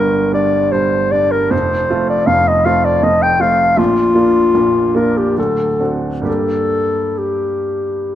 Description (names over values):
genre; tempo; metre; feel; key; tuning
classical, romantic duo for clarinet and grand piano; 64-81 BPM; 3/4; rubato; G minor; A4 = 440 Hz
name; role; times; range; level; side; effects
mellow clarinet; melody; 0.0-8.2 s; F4 to G5; -14 LUFS; left 2 dB; none
clear baby grand piano; accompaniment; 0.0-8.2 s; D1 to G4; -17 LUFS; right 3 dB; none
room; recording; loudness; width
moderate recital hall reverb, RT60 1.5 s; close, detailed microphones; -12 LUFS; side -11 dB against mid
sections
0.0-8.2 A section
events
none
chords
0.0 Gm; 1.5 F; 3.8 Bb; 5.4 D7; 6.3 Gm